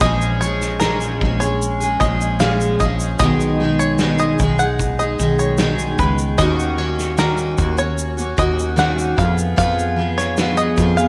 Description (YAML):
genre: acoustic pop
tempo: 75 BPM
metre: 4/4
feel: straight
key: Eb minor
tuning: A4 = 439 Hz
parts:
  - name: picked steel-string acoustic guitar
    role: accompaniment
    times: 0.0-11.1 s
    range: Bb2 to Ab4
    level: -21 LUFS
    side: equal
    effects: double-tracked
  - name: bluegrass banjo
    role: arpeggios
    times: 0.0-11.1 s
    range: Bb4 to Gb5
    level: -25 LUFS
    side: equal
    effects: none
  - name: woody fretless electric bass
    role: bass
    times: 0.0-11.1 s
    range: Bb1 to F2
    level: -24 LUFS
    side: equal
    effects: none
  - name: loose indie drum kit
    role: drums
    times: 0.0-11.1 s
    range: kick drum, shaker, snare drum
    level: -26 LUFS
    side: equal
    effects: none
room: moderate echo chamber reverb, RT60 2.3 s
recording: none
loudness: -18 LUFS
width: mono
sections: 0.0-11.1 A section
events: none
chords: 0.0 Bbm7; 3.2 Abm/Cb; 6.4 Ebm7; 9.2 Fdim